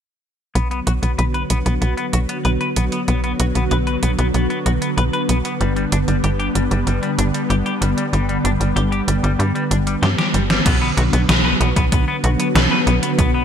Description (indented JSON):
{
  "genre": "synthwave",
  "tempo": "95 BPM",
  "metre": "4/4",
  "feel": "straight",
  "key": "B minor",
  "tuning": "A4 = 440 Hz",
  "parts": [
    { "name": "analog string pad", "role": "sustained chords", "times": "0.6-13.4 s", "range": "D3 to B3", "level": "-21 LUFS", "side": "equal", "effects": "ensemble chorus, sidechain pumping" },
    { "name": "clean electric guitar", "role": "riff", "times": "0.6-13.4 s", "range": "G3 to B4", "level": "-25 LUFS", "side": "left 4 dB", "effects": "lush chorus, low-pass filter, ping-pong delay" },
    { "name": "tight sequencer bass", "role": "bass", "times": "0.6-13.4 s", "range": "G1 to G2", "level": "-18 LUFS", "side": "equal", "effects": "sidechain pumping" },
    { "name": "gated 80s digital drum machine", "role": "drums", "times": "0.6-13.3 s", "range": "crash cymbal, hi-hat, snare drum", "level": "-22 LUFS", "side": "right 1 dB", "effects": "gated reverb, gated reverb snare, overdrive" },
    { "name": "electronic kick drum", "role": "drums", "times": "10.7-13.3 s", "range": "none", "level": "-18 LUFS", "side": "equal", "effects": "overdrive" }
  ],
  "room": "light reverb",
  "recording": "bright 1980s-style digital production",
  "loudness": "-16 LUFS",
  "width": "side -8 dB against mid",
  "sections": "0.6-10.7 A section; 10.7-13.4 B section",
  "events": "filter sweep on analog synth bass 0.6-10.7; drum fill 10.0-10.7",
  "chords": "0.6 Bm; 5.6 G; 10.7 Bm"
}